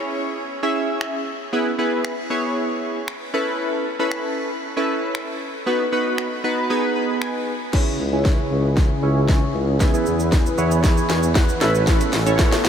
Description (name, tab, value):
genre	dance-pop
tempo	116 BPM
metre	4/4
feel	straight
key	C# minor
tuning	A4 = 440 Hz
part	chorused retro synth keys	accompaniment	0.0-12.7 s	B3 to B5	-22 LUFS	right 1 dB	sidechain pumping, low-pass filter
part	house drum kit	drums	1.0-12.7 s	crash cymbal, finger snaps, hi-hat, kick drum, shaker, snare drum	-23 LUFS	equal	none
part	warm analog pad	sustained chords	7.7-12.7 s	C#3 to B4	-25 LUFS	left 1 dB	wide subtle chorus, sidechain pumping, low-pass filter
part	warm tuba	bass	8.0-12.7 s	A1 to E2	-22 LUFS	equal	sidechain pumping
room	moderate huge ambient reverb, RT60 7.4 s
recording	dreamy mix soaked in reverb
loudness	-18 LUFS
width	side -8 dB against mid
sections	0.0-7.7 A section; 7.7-12.7 B section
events	synth keys fill 6.7-7.7, 10.3-11.9; build-up 7.7-12.7; drum fill 7.7-12.7; filter sweep 7.7-12.7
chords	0.0 C#m; 1.5 E; 3.3 Aadd9; 5.7 B; 6.7 G#m; 7.7 C#m; 9.8 E; 11.6 Aadd9